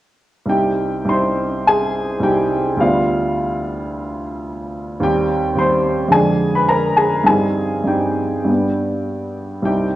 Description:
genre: classical, romantic character piece for solo piano.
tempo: 98-111 BPM.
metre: 4/4.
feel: rubato.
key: C minor.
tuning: A4 = 440 Hz.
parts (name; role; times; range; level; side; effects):
clear upright piano; solo; 0.5-10.0 s; C2 to C6; -16 LUFS; equal; none.
room: wet recital hall reverb, RT60 1.4 s.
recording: worn, warbling old tape, cassette tape, warbly pitch drift.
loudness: -15 LUFS.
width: side -14 dB against mid.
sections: 0.5-10.0 A section.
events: none.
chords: 0.5 Cm; 2.8 G7/D; 5.0 Cm/Eb; 6.1 Ddim/F; 7.3 Cm/G; 8.5 G.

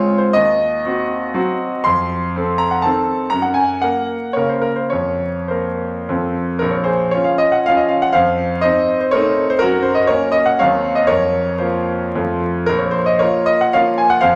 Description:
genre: classical, romantic triple-time dance for piano with dotted rhythms.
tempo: 97-133 BPM.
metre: 3/4.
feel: rubato.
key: Bb minor.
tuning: A4 = 439 Hz.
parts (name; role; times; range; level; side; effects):
clear grand piano; solo; 0.0-14.4 s; Bb1 to C6; -17 LUFS; equal; none.
room: wet recital hall reverb, RT60 1.4 s.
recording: vinyl crackle.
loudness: -17 LUFS.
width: mono.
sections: 0.0-6.6 A section; 6.6-14.4 B section.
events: none.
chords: 0.3 Cdim/Eb; 1.8 F7; 3.3 Gb; 4.9 Fsus4; 6.1 F; 6.6 Bbm; 8.2 F7; 9.6 Gb; 10.6 Cdim/Eb; 11.1 Fsus4; 12.2 F; 12.7 Bbm.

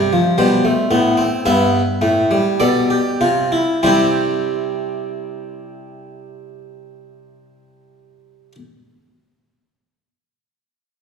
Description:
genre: classical, baroque-style 4-part fugue for harpsichord.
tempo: 47-59 BPM.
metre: 4/4.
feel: straight.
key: C major.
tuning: A4 = 440 Hz.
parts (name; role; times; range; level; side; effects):
harpsichord; solo; 0.0-8.6 s; G2 to G5; -15 LUFS; equal; none.
room: wet recital hall reverb, RT60 1.6 s.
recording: heard from further back in the room.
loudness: -14 LUFS.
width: side -6 dB against mid.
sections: 0.0-3.8 A section; 3.8-8.9 B section.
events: slowing down 0.0-3.8.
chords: 0.0 C5; 1.4 G7; 3.8 C.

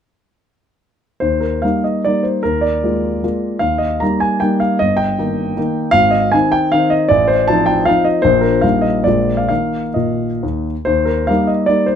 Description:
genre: classical, romantic triple-time dance for piano with dotted rhythms.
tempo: 124-166 BPM.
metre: 3/4.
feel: rubato.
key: Eb major.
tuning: A4 = 440 Hz.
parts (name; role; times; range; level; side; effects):
warm grand piano; solo; 1.2-12.0 s; G1 to Bb5; -13 LUFS; equal; none.
room: light reverb.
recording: dark, warm production.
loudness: -13 LUFS.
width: side -8 dB against mid.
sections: 1.2-10.9 A section; 10.9-12.0 A section.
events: none.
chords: 1.2 Eb; 2.4 Bb7/Eb; 3.6 Eb; 4.8 Eb/G; 5.9 Ab; 7.1 F7/A; 8.2 Bb; 8.6 Eb/Bb; 9.1 Bb7; 9.5 Eb5; 10.9 Eb.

